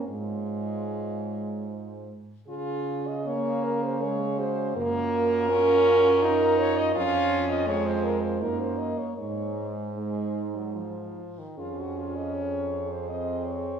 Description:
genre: classical, lyrical piece for horn quartet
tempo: 72-85 BPM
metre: 3/4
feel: rubato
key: Db major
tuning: A4 = 444 Hz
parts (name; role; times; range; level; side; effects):
- warm French horn; melody; 0.0-13.8 s; F4 to Eb5; -27 LUFS; left 1 dB; none
- mellow French horn; second line; 0.0-13.8 s; Eb4 to Ab4; -35 LUFS; right 8 dB; none
- warm French horn; accompaniment; 0.0-13.8 s; Eb3 to Eb4; -30 LUFS; right 1 dB; none
- warm French horn; bass; 0.1-13.8 s; F2 to Db3; -32 LUFS; right 4 dB; none
room: wet recital hall reverb, RT60 1.4 s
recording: recorded in a church or concert hall, small room ambience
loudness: -24 LUFS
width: side -7 dB against mid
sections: 0.0-2.5 A section; 2.5-13.8 B section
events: none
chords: 0.1 Db/Ab; 2.5 Db5; 4.8 Gbmaj7; 7.0 Db/F; 8.4 Ebm/Gb; 9.2 Ab; 11.6 Db/F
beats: | 0.08 0.89 1.68 | 2.49 3.26 4.01 | 4.76 5.50 6.22 | 6.96 7.68 8.41 | 9.18 9.97 10.77 | 11.59 12.36 13.09

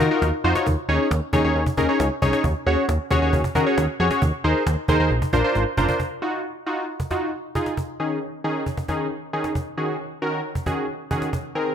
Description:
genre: synth-pop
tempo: 135 BPM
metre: 4/4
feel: straight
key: unclear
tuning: A4 = 440 Hz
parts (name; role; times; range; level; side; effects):
- warm analog keys; accompaniment; 0.0-11.7 s; Eb3 to Db5; -22 LUFS; left 1 dB; chorus
- fat analog bass; bass; 0.0-5.9 s; Gb1 to Eb3; -22 LUFS; right 1 dB; none
- cajon; drums; 0.0-11.4 s; none; -28 LUFS; right 1 dB; none
room: moderate plate reverb, RT60 1.2 s, small room ambience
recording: bright 1980s-style digital production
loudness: -20 LUFS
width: side -8 dB against mid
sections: 0.0-6.0 A section; 6.0-11.7 B section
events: drum fill 5.6-6.0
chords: 0.0 Ebmadd9; 0.7 Dbsus2/Eb; 2.4 Gbsus2/Eb; 4.2 Abadd9/Eb; 5.1 Bbadd9; 6.0 Ebmadd9; 7.8 Dbsus2/Eb; 9.6 Gbsus2/Eb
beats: 0.22 | 0.66 1.11 1.55 2.00 | 2.44 2.89 3.33 3.77 | 4.22 4.66 5.11 5.55 | 6.00 6.44 6.89 7.33 | 7.78 8.22 8.66 9.11 | 9.55 10.00 10.44 10.89 | 11.33

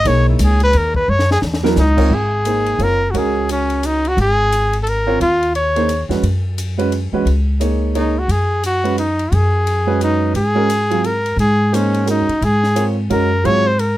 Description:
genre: modal jazz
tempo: 175 BPM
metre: 3/4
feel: swing 62% on 8ths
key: Ab mixolydian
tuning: A4 = 440 Hz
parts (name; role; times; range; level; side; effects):
- warm trumpet; melody; 0.0-14.0 s; Db4 to Db5; -17 LUFS; left 1 dB; none
- warm baby grand piano; accompaniment; 0.0-13.6 s; Gb3 to Db5; -20 LUFS; right 3 dB; none
- upright bass; bass; 0.0-14.0 s; Gb1 to Ab2; -17 LUFS; equal; none
- compact cocktail drum kit; drums; 0.1-13.9 s; crash cymbal, hi-hat, kick drum, ride cymbal, snare drum; -29 LUFS; left 2 dB; none
room: little or no reverb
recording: close, detailed microphones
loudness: -14 LUFS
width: side -15 dB against mid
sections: 0.0-2.1 A section; 2.1-14.0 B section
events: trumpet solo 0.0-2.1; drum fill 1.1-1.8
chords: 0.0 Gb13sus4; 2.1 Ab9sus4; 6.2 Gbsus4; 10.3 Ab13sus4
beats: | 0.05 0.40 0.74 | 1.08 1.43 1.77 | 2.11 2.45 2.80 | 3.14 3.48 3.83 | 4.17 4.51 4.86 | 5.20 5.54 5.89 | 6.23 6.58 6.92 | 7.26 7.61 7.95 | 8.29 8.63 8.98 | 9.32 9.66 10.01 | 10.35 10.69 11.04 | 11.38 11.72 12.07 | 12.41 12.75 13.10 | 13.44 13.78

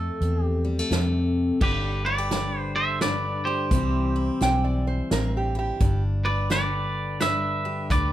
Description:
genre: honky-tonk and classic country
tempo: 86 BPM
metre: 3/4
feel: swing 63% on 8ths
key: G major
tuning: A4 = 440 Hz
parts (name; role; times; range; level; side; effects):
- twangy electric guitar; melody; 0.0-8.1 s; G4 to E5; -27 LUFS; right 2 dB; none
- picked steel-string acoustic guitar; accompaniment; 0.0-8.1 s; F2 to G4; -28 LUFS; left 3 dB; none
- vintage muted fingered electric bass; bass; 0.0-8.1 s; G1 to F2; -26 LUFS; equal; none
- unplugged drum kit; drums; 0.2-8.1 s; crash cymbal, hi-hat, kick drum, snare drum; -26 LUFS; right 1 dB; none
- lap resonator guitar; second line; 4.4-6.0 s; G4 to G5; -28 LUFS; right 3 dB; none
room: light reverb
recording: none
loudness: -22 LUFS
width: side -12 dB against mid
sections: 0.0-1.6 A section; 1.6-8.1 B section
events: none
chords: 0.0 F; 1.6 G; 3.7 C; 5.8 G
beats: 0.21 0.91 | 1.61 2.31 3.01 | 3.71 4.41 5.11 | 5.81 6.51 7.20 | 7.90

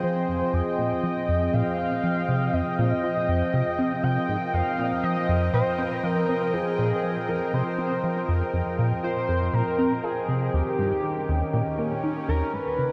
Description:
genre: ambient, sequencer-driven space music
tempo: 120 BPM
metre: 4/4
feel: straight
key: F minor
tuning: A4 = 440 Hz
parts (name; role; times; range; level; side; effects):
- pulse-width lead; melody; 0.0-12.9 s; G4 to G5; -30 LUFS; equal; chorus, delay
- sweeping resonant pad; sustained chords; 0.0-12.9 s; Eb3 to G5; -30 LUFS; equal; chorus
- plucky analog bass; riff; 0.0-12.9 s; Eb2 to C4; -29 LUFS; equal; ensemble chorus, delay
- wind-like tuned noise texture; texture; 0.0-12.9 s; G5; -42 LUFS; equal; none
- analog drone; bass; 12.9 s; G#1; -59 LUFS; equal; none
room: wet huge ambient reverb, RT60 7.5 s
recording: dreamy mix soaked in reverb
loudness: -25 LUFS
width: mono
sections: 0.0-12.5 A section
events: none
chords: 0.0 Fm7; 10.5 Eb7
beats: 0.03 | 0.53 1.03 1.53 2.03 | 2.53 3.03 3.53 4.03 | 4.53 5.03 5.53 6.03 | 6.53 7.03 7.53 8.03 | 8.53 9.03 9.53 10.03 | 10.53 11.03 11.53 12.03 | 12.53

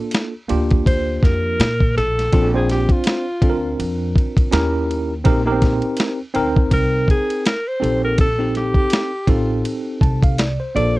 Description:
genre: hip hop, jazz-hop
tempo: 82 BPM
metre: 4/4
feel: swing 58% on 16ths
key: unclear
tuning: A4 = 440 Hz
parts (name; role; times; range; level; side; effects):
- mellow tine electric piano; accompaniment; 0.0-11.0 s; Bb3 to A5; -21 LUFS; right 1 dB; medium stereo tremolo
- dusty soul sampler-style drum kit; drums; 0.1-10.9 s; hi-hat, kick drum, ride cymbal, snare drum; -16 LUFS; equal; none
- upright bass; bass; 0.5-11.0 s; A1 to Bb2; -22 LUFS; equal; none
- breathy alto saxophone; melody; 0.9-11.0 s; F4 to D5; -21 LUFS; equal; none
room: little or no reverb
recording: cassette tape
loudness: -16 LUFS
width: side -19 dB against mid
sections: 0.0-11.0 A section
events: alto saxophone solo 0.0-11.0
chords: 0.0 Gm9; 2.3 Bbadd9; 4.5 Eb7b9; 5.3 Bbsus4; 7.8 Am7b5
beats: 0.13 0.86 1.60 | 2.33 3.06 3.79 4.52 | 5.25 5.99 6.72 7.45 | 8.18 8.91 9.64 10.38

